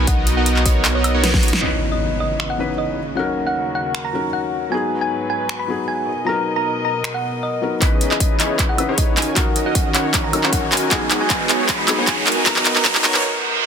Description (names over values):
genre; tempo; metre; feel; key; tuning
future bass; 155 BPM; 4/4; half-time; unclear; A4 = 440 Hz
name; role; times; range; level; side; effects
big bright polysynth; riff; 0.0-1.5, 7.8-13.2 s; B3 to G#5; -23 LUFS; right 1 dB; vintage 12-bit sampler grit, sidechain pumping
warm 808-style bass; bass; 0.0-1.4, 7.8-13.2 s; G#1 to D#2; -22 LUFS; equal; sidechain pumping, high-pass filter
thumb-piano-like synth pluck; melody; 0.1-13.2 s; B4 to B5; -25 LUFS; equal; chorus, cassette tape, sidechain pumping, tape echo
big-room dance drum kit; drums; 0.1-13.2 s; finger snaps, handclaps, hi-hat, snare drum, woodblock; -20 LUFS; equal; low-pass filter on hats, low-pass filter on snare, low-pass filter on perc, low-pass filter on room
electronic kick drum; drums; 0.1-1.4, 7.8-12.9 s; none; -20 LUFS; equal; none
felt-muted upright piano; accompaniment; 1.6-13.7 s; E3 to B4; -25 LUFS; left 4 dB; sidechain pumping, ping-pong delay
warm studio string section; sustained chords; 1.6-13.2 s; D#2 to D#5; -29 LUFS; equal; sidechain pumping, low-pass filter
impact, riser and reverse cymbal; sound effects; 1.6-3.2, 9.3-13.7 s; none; -24 LUFS; right 1 dB; none
room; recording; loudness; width
light reverb, digital ambience; dense, heavily limited modern master, high-pass filter; -16 LUFS; side -7 dB against mid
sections
0.0-1.6 A section; 1.6-7.8 B section; 7.8-13.7 C section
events
drop 0.0-1.6; drum fill 1.2-1.6, 7.8-13.2; band accent 1.5; impact 1.6-3.2; filter sweep on string section 1.6-7.8; build-up 7.8-13.7; filter sweep on analog polysynth 7.8-13.7; filter sweep 7.8-13.7; riser 9.3-13.2; break 13.2-13.7; reverse cymbal 13.2-13.7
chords
0.0 Bmaj7; 1.6 C#m9; 3.0 D#m7; 4.7 G#m7; 6.1 Bmaj7; 7.8 C#m9; 9.2 D#m7; 10.9 G#m7; 12.3 Bmaj7